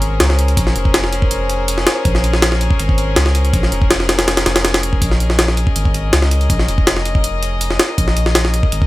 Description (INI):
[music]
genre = drum and bass, jungle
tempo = 162 BPM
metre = 4/4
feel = straight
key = Bb minor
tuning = A4 = 440 Hz
[part]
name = rich chamber string section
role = sustained chords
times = 0.0-8.9 s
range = Db4 to Eb5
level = -22 LUFS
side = left 2 dB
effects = none
[part]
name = soft dub sub bass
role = bass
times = 0.0-8.9 s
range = F1 to Db2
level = -17 LUFS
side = equal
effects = none
[part]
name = jungle sampler-style drum kit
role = drums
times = 0.0-8.9 s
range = hi-hat, kick drum, snare drum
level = -15 LUFS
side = equal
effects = studio reverb
[sound]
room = little or no reverb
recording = none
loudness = -13 LUFS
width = side -18 dB against mid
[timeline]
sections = 0.0-8.9 A section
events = none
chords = 0.0 Bbm9